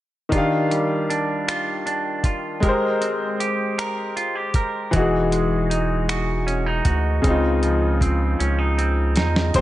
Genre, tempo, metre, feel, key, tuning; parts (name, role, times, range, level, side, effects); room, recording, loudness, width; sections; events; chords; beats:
slow six-eight R&B; 52 BPM (dotted quarters); 6/8; straight; Eb major; A4 = 440 Hz
clean electric guitar; second line; 0.3-9.6 s; Db3 to Bb4; -25 LUFS; right 3 dB
bright baby grand piano; accompaniment; 0.3-9.6 s; Db3 to F5; -23 LUFS; left 2 dB
dusty soul sampler-style drum kit; drums; 0.3-9.6 s; finger snaps, hi-hat, kick drum, snare drum; -23 LUFS; equal
round analog bass; bass; 4.9-9.6 s; E1 to Fb2; -22 LUFS; equal
light reverb, digital ambience; nothing above 10.6 kHz; -19 LUFS; side -15 dB against mid
0.3-9.6 A section
drum fill 8.4-9.6
0.3 Ebmaj9; 2.6 Abmaj9; 4.9 Emaj9; 7.2 Dbmaj9
| 0.32 1.47 | 2.63 3.78 | 4.93 6.09 | 7.24 8.40 | 9.55